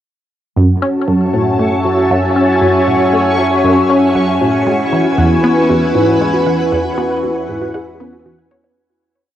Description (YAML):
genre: ambient, sequencer-driven space music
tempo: 117 BPM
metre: 4/4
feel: straight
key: F# minor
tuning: A4 = 441 Hz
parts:
  - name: string machine, full ensemble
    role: sustained chords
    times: 0.6-8.8 s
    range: E4 to A5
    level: -14 LUFS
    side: equal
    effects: ensemble chorus, shimmer reverb
  - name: warbly dusty pluck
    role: arpeggios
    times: 0.6-8.8 s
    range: C#4 to F#5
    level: -26 LUFS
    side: right 2 dB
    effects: none
  - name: resonant blip pluck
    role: riff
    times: 0.6-8.7 s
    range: E2 to C#4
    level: -16 LUFS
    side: equal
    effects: phaser, analog delay, shimmer reverb
  - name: analog drone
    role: bass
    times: 1.3-8.7 s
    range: E2 to F#2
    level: -25 LUFS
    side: equal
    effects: chorus, transformer saturation
  - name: bubbling stepped-filter texture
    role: texture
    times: 1.0-8.8 s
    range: C#4 to C#6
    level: -18 LUFS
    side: left 1 dB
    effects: chorus, built-in reverb, shimmer reverb
room: wet booth ambience, RT60 0.2 s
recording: home recording on cassette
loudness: -11 LUFS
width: side -11 dB against mid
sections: 0.6-8.8 A section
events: fade-out 6.0-8.8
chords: 0.6 F#m7; 4.7 E